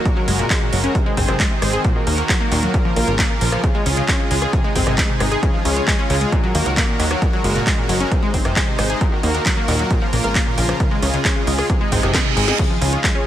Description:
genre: uplifting trance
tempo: 134 BPM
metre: 4/4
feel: straight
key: Db major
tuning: A4 = 438 Hz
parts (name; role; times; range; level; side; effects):
- supersaw pad; sustained chords; 0.0-13.3 s; C3 to C5; -23 LUFS; equal; sidechain pumping
- impact and reverse cymbal; sound effects; 0.1, 11.9-12.6 s; none; -25 LUFS; right 8 dB; none
- wide unison pluck; arpeggios; 0.1-13.2 s; Bb2 to Db5; -23 LUFS; left 2 dB; sidechain pumping, tape echo
- electronic kick drum; drums; 0.1-13.1 s; none; -20 LUFS; equal; none
- techno drum kit; drums; 0.1-13.1 s; crash cymbal, handclaps, hi-hat, rim click, snare drum; -23 LUFS; right 1 dB; none
- plucky analog bass; bass; 0.3-13.0 s; Gb1 to Eb2; -21 LUFS; equal; sidechain pumping
room: light reverb, digital ambience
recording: none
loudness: -15 LUFS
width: side -12 dB against mid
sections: 0.0-13.3 A section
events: reverse cymbal 11.9-12.6; drum fill 12.1-12.6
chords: 0.1 Gbadd9; 0.9 Ab; 1.8 Ebm; 2.7 Bbm; 3.6 Db; 4.5 Ab; 5.4 Db; 6.3 Ebm; 7.2 Gbadd9; 8.1 Ab; 9.0 Ebm; 9.9 Bbm; 10.8 Db; 11.7 Ab; 12.6 Db

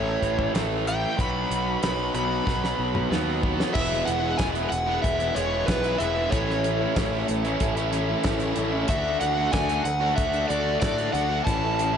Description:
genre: classic rock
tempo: 93 BPM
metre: 4/4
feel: straight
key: E major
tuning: A4 = 440 Hz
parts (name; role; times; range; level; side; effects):
- overdriven slide guitar; melody; 0.0-12.0 s; B4 to B5; -27 LUFS; left 1 dB; none
- overdriven electric guitar; riff; 0.0-12.0 s; A2 to F#4; -27 LUFS; right 1 dB; slapback echo
- fuzz picked electric bass; bass; 0.0-12.0 s; E1 to A2; -29 LUFS; equal; overdrive
- damped 70s drum kit; drums; 0.2-11.9 s; crash cymbal, hi-hat, kick drum, snare drum, toms; -29 LUFS; equal; none
- tonewheel organ; sustained chords; 3.5-12.0 s; A3 to F#5; -34 LUFS; equal; slow rotary speaker, overdrive, chorus vibrato
room: moderate lush hall reverb, RT60 3.0 s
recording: big arena sound, nothing above 10.8 kHz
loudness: -22 LUFS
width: side -8 dB against mid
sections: 0.0-3.8 A section; 3.8-12.0 B section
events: electric slide guitar solo 0.0-3.8; drum fill 2.5-3.8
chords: 0.0 A; 1.2 B; 3.8 E; 6.3 A; 8.9 D; 11.5 A

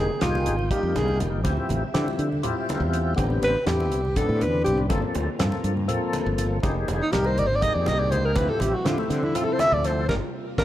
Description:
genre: electric jazz fusion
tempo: 243 BPM (eighths)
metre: 7/8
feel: straight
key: G dorian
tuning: A4 = 440 Hz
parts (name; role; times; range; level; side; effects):
- dark alto saxophone; melody; 0.0-10.6 s; A3 to E5; -24 LUFS; equal; none
- percussive tonewheel organ; accompaniment; 0.0-10.6 s; D3 to Bb4; -28 LUFS; left 3 dB; slow rotary speaker, chorus vibrato
- ensemble organ-string; sustained chords; 0.0-10.6 s; C3 to G5; -36 LUFS; equal; ensemble chorus
- fretless electric bass; bass; 0.0-10.6 s; F1 to D3; -26 LUFS; equal; wide subtle chorus
- damped 70s drum kit; drums; 0.2-10.6 s; hi-hat, kick drum, snare drum; -29 LUFS; equal; none
- congas; percussion; 0.2-10.6 s; none; -32 LUFS; right 2 dB; none
room: light reverb, small room ambience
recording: none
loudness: -21 LUFS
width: side -13 dB against mid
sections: 0.0-10.6 A section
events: alto saxophone solo 0.0-10.6; drum fill 4.3-4.9, 10.3-10.6; band accent 10.1-10.6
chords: 0.0 Fm11; 1.4 Dm11; 3.2 Am11; 4.9 Gm11; 6.6 Fm11; 8.4 Dm11; 10.1 Gm7

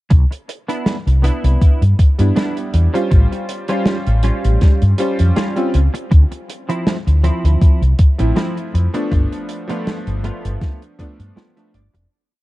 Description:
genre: vaporwave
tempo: 80 BPM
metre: 4/4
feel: swing 54% on 16ths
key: C major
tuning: A4 = 440 Hz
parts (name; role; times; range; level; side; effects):
- semi-hollow electric guitar; riff; 0.1-12.1 s; F3 to G5; -25 LUFS; right 1 dB; analog chorus, analog delay
- woody fretless electric bass; bass; 0.1-12.0 s; F1 to G2; -14 LUFS; equal; wide subtle chorus
- electronic kick drum; drums; 0.1-11.2 s; none; -11 LUFS; equal; none
- natural country drum kit; drums; 0.1-12.1 s; hi-hat, snare drum; -23 LUFS; right 1 dB; none
- clear electric grand piano; accompaniment; 2.2-11.8 s; F3 to C5; -22 LUFS; equal; lush chorus, analog delay
room: small room ambience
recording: dark, warm production, cassette tape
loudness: -14 LUFS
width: side -18 dB against mid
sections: 0.1-12.1 groove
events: fade-out 8.1-12.1; clean electric guitar fill 11.0-12.1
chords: 0.1 Cmaj9; 3.1 A7alt; 6.1 Dm9; 9.1 G9

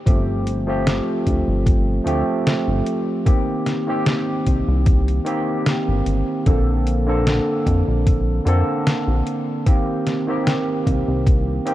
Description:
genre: vaporwave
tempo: 75 BPM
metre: 4/4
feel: swing 54% on 16ths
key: C dorian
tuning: A4 = 441 Hz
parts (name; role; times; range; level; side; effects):
- barky tine electric piano; accompaniment; 0.1-11.7 s; D3 to A4; -21 LUFS; right 1 dB; overdrive, lush chorus, vintage 12-bit sampler grit, analog delay
- chorused synth bass; bass; 0.1-11.6 s; G1 to F2; -20 LUFS; equal; tube saturation
- detuned 8-bit digital drum machine; drums; 0.1-11.7 s; hi-hat, snare drum; -22 LUFS; equal; none
- electronic kick drum; drums; 0.1-11.4 s; none; -17 LUFS; equal; none
room: digital ambience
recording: dark, warm production, cassette tape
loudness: -17 LUFS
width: side -14 dB against mid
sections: 0.0-11.7 A section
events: none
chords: 0.0 G9sus4; 3.3 Cm7; 6.5 Bbmaj9; 9.7 Cm7

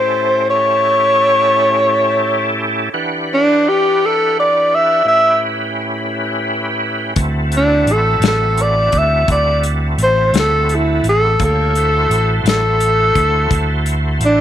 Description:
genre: slow blues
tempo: 57 BPM (dotted quarters)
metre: 12/8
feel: straight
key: unclear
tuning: A4 = 439 Hz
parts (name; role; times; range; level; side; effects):
- breathy tenor saxophone; melody; 0.0-14.4 s; D4 to E5; -13 LUFS; equal; none
- overdriven tonewheel organ; sustained chords; 0.0-14.4 s; A2 to F#5; -20 LUFS; equal; slow rotary speaker, chorus vibrato
- fingered electric bass; bass; 7.2-14.4 s; A1 to D2; -17 LUFS; right 1 dB; none
- natural country drum kit; drums; 7.2-14.4 s; hi-hat, kick drum, snare drum; -19 LUFS; left 3 dB; none
room: moderate spring reverb, RT60 1.7 s, studio ambience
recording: 1960s-style stereo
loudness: -12 LUFS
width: side -10 dB against mid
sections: 0.0-14.4 A section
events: none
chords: 0.0 A7; 2.9 Em7; 5.0 A9; 7.2 D9

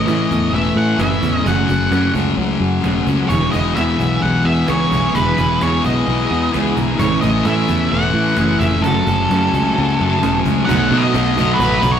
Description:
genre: rock, shoegaze and dream pop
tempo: 130 BPM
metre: 4/4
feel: straight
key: E major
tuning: A4 = 440 Hz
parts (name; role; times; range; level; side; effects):
- octave-fuzz lead guitar; melody; 0.0-12.0 s; A4 to F#5; -20 LUFS; right 1 dB; distortion
- evolving wavetable pad; sustained chords; 0.0-12.0 s; A3 to D#6; -29 LUFS; right 2 dB; chorus, built-in reverb
- twangy electric guitar; arpeggios; 0.0-12.0 s; E3 to G#4; -29 LUFS; right 4 dB; none
- overdriven semi-hollow guitar; riff; 0.0-12.0 s; A2 to F#4; -22 LUFS; right 6 dB; none
- thick fuzz guitar; riff; 0.0-12.0 s; E2 to B3; -19 LUFS; left 6 dB; distortion
- fingered electric bass; bass; 0.0-12.0 s; E1 to B2; -20 LUFS; right 1 dB; none
- cajon; drums; 0.1-11.9 s; none; -27 LUFS; right 1 dB; none
- overdriven semi-hollow guitar; riff; 10.7-12.0 s; B2 to B3; -24 LUFS; right 3 dB; none
room: wet stone room reverb, RT60 1.3 s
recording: rough rehearsal-room recording, tube saturation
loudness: -14 LUFS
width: side -8 dB against mid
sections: 0.0-10.7 A section; 10.7-12.0 B section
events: none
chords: 0.0 Amaj7; 3.3 Emaj7; 7.0 Amaj7; 8.8 F#madd9; 10.7 B7

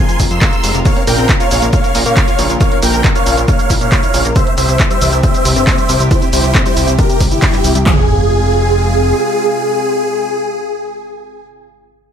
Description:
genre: uplifting trance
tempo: 137 BPM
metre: 4/4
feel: straight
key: F harmonic minor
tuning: A4 = 440 Hz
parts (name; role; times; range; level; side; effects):
- big supersaw lead; melody; 0.0-11.5 s; E4 to E6; -16 LUFS; right 1 dB; phaser, sidechain pumping, tape echo
- lush unison pad; sustained chords; 0.0-11.5 s; C3 to Bb4; -21 LUFS; equal; chorus, sidechain pumping
- analog pluck; arpeggios; 0.0-8.1 s; G2 to Bb4; -22 LUFS; left 3 dB; chorus, sidechain pumping, ping-pong delay
- punchy analog drum machine; drums; 0.1-7.8 s; handclaps, hi-hat, shaker; -18 LUFS; right 1 dB; none
- fat analog bass; bass; 0.2-9.1 s; F1 to Bb2; -16 LUFS; equal; sidechain pumping
- big-room dance drum kit; drums; 0.2-8.0 s; handclaps, kick drum, toms; -13 LUFS; equal; overdrive
room: little or no reverb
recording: none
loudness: -10 LUFS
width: side -8 dB against mid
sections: 0.0-7.9 A section; 7.9-11.4 B section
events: drop 0.0-7.9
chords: 0.0 Fm; 0.9 Bbm; 4.4 C; 7.9 Fm

